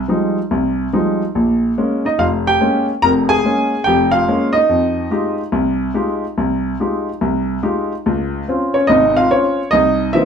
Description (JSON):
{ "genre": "solo jazz", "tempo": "143 BPM", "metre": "4/4", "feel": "swing 66% on 8ths", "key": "F minor", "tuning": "A4 = 440 Hz", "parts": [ { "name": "clear grand piano", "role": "solo", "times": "0.0-10.2 s", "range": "F1 to Bb5", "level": "-14 LUFS", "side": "equal", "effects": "none" } ], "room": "wet club reverb, RT60 0.7 s", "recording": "heard from further back in the room", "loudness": "-14 LUFS", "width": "side -7 dB against mid", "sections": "0.0-10.2 A section", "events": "none", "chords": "0.0 Fm9; 1.3 Bbm7; 4.7 Fm9; 8.0 Dbmaj7; 9.7 C7#9", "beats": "0.08 0.50 0.92 | 1.34 1.76 2.17 2.60 | 3.01 3.43 3.85 4.27 | 4.69 5.11 5.53 5.95 | 6.37 6.79 7.21 7.62 | 8.04 8.46 8.88 9.30 | 9.72 10.14" }